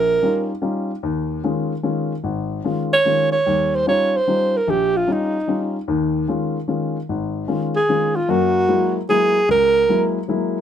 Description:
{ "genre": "jazz", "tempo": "149 BPM", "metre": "3/4", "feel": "swing 66% on 8ths", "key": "unclear", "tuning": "A4 = 440 Hz", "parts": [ { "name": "breathy alto saxophone", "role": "melody", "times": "0.0-0.5, 2.9-10.1 s", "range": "Eb4 to Db5", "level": "-17 LUFS", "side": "right 2 dB", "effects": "none" }, { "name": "warm upright piano", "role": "accompaniment", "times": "0.0-10.6 s", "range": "Ab1 to F4", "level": "-21 LUFS", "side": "left 4 dB", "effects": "none" } ], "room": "light reverb", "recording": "close, detailed microphones", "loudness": "-17 LUFS", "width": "side -9 dB against mid", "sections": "0.0-8.3 A section; 8.3-10.6 B section", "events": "none", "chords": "0.0 Eb9; 1.0 Db/Eb; 3.5 Eb9; 5.9 Db/Eb; 8.3 F#9" }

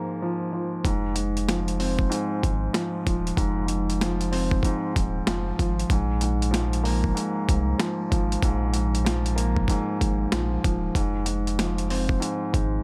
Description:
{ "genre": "hip hop, boom-bap hip-hop", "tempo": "95 BPM", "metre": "4/4", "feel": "swing 63% on 16ths", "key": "F minor", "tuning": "A4 = 440 Hz", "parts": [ { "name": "dark baby grand piano", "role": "accompaniment", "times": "0.0-12.8 s", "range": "Ab2 to C4", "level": "-29 LUFS", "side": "equal", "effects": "high-pass filter, low-pass filter" }, { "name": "warm sub bass", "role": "bass", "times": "0.8-12.8 s", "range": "Eb1 to C2", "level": "-29 LUFS", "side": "equal", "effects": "none" }, { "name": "boom bap sampler-style drum kit", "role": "drums", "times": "0.8-12.7 s", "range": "hi-hat, kick drum, snare drum", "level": "-28 LUFS", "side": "equal", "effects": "overdrive" } ], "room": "little or no reverb", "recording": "none", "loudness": "-25 LUFS", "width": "mono", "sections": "0.8-12.8 A section", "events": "break 0.0-0.8", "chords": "0.0 Bb5; 0.8 Fm; 5.9 Bb5; 11.0 Fm" }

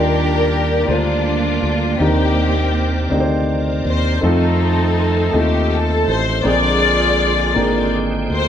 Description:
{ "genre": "slow gospel", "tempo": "54 BPM (dotted quarters)", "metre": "6/8", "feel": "straight", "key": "Eb major", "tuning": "A4 = 440 Hz", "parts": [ { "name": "rich studio string section", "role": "melody", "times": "0.0-8.5 s", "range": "Bb3 to D5", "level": "-18 LUFS", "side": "left 2 dB", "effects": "none" }, { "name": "warm concert grand piano", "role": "accompaniment", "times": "0.0-8.5 s", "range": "Bb2 to G5", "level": "-20 LUFS", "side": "equal", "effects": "none" }, { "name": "bright tonewheel organ", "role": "sustained chords", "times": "0.0-8.5 s", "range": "C3 to G5", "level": "-26 LUFS", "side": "right 2 dB", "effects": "slow rotary speaker, overdrive, chorus vibrato" }, { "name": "fingered electric bass", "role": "bass", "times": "0.0-8.5 s", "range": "Ab1 to F2", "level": "-19 LUFS", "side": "equal", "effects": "none" } ], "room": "moderate large studio reverb, RT60 0.8 s", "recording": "band playing live in one room", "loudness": "-14 LUFS", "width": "side -9 dB against mid", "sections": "0.0-8.5 A section", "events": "none", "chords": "0.0 Ebmaj9; 2.0 Cm9/Eb; 4.2 F7; 6.4 Bb13" }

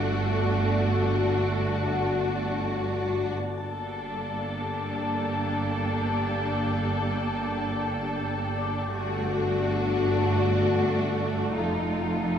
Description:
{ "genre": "cinematic", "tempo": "free time", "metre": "none", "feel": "none", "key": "G harmonic minor", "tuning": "A4 = 439 Hz", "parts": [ { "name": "warm symphonic violin section", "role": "melody", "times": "0.0-12.4 s", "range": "F4 to A4", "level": "-30 LUFS", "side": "left 5 dB", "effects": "none" }, { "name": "rich symphonic violin section", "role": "second line", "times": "0.0-12.4 s", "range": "D4 to Eb4", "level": "-33 LUFS", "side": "left 2 dB", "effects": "none" }, { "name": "warm symphonic viola section", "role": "accompaniment", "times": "0.0-12.4 s", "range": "A3 to Bb3", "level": "-33 LUFS", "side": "right 2 dB", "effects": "none" }, { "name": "wind-like tuned noise texture", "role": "sustained chords", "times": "0.0-12.4 s", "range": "F4 to A5", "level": "-34 LUFS", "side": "equal", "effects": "built-in reverb" }, { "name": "dark symphonic cello section", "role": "bass", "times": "0.0-12.4 s", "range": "F2 to G2", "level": "-31 LUFS", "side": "right 3 dB", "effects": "none" }, { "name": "rich studio double bass section", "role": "bass", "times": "0.0-12.4 s", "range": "F1 to G1", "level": "-32 LUFS", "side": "right 3 dB", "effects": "none" }, { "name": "concert harp", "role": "texture", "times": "1.9-10.6 s", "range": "D5 to A5", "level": "-40 LUFS", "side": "left 3 dB", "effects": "none" } ], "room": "wet recital hall reverb, RT60 1.4 s", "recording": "recorded in a church or concert hall", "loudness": "-24 LUFS", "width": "side -8 dB against mid", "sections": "0.0-12.4 A section", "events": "none", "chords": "0.0 Gmadd9; 8.9 D/G; 11.6 F7" }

